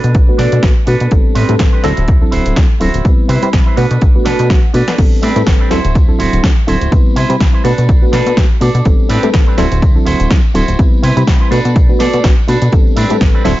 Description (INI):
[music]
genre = filtered disco house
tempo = 124 BPM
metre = 4/4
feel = swing 56% on 16ths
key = unclear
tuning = A4 = 440 Hz
[part]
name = electric guitar with an envelope filter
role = riff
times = 0.0-13.6 s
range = C4 to A5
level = -20 LUFS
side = right 3 dB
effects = sidechain pumping, low-pass filter
[part]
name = plucky analog bass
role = bass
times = 0.0-13.5 s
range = D1 to C3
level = -15 LUFS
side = equal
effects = sidechain pumping, low-pass filter
[part]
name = punchy analog drum machine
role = drums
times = 0.0-13.6 s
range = crash cymbal, hi-hat, snare drum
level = -21 LUFS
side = equal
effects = sidechain pumping on hats, sidechain pumping on cymbals
[part]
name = tambourine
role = percussion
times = 0.0-13.6 s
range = none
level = -36 LUFS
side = left 3 dB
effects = sidechain pumping on perc, low-pass filter on perc
[part]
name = electronic kick drum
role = drums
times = 0.1-13.3 s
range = none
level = -11 LUFS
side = equal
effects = none
[part]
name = reed electric piano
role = accompaniment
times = 0.3-13.5 s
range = F#3 to B5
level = -17 LUFS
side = equal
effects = phaser, sidechain pumping, low-pass filter
[sound]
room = little or no reverb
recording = nothing above 7.5 kHz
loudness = -9 LUFS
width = side -16 dB against mid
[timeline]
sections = 0.0-13.6 A section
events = clean electric guitar fill 4.0-5.0; drum fill 4.5-5.0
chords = 0.0 Bm7; 1.1 Am11; 1.8 D9; 3.0 Cmaj7; 3.8 Bm7; 5.0 Am11; 5.7 D9; 6.9 Cmaj7; 7.6 Bm7; 8.9 Am11; 9.6 D9; 10.8 Cmaj7; 11.5 Bm7; 12.7 Am11